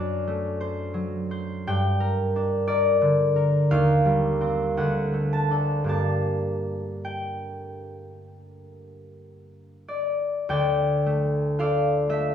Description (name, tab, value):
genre	classical, solo harp piece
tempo	47-61 BPM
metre	4/4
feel	rubato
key	G minor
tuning	A4 = 439 Hz
part	concert harp	solo	0.0-12.3 s	D2 to A5	-22 LUFS	equal	none
room	wet stone room reverb, RT60 1.0 s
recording	heard from further back in the room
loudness	-22 LUFS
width	side -9 dB against mid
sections	0.0-10.5 A section; 10.5-12.3 B section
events	none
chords	0.0 D7/F#; 1.7 Gm; 3.7 Cm/Eb; 4.8 D; 5.9 Gm; 10.5 Dm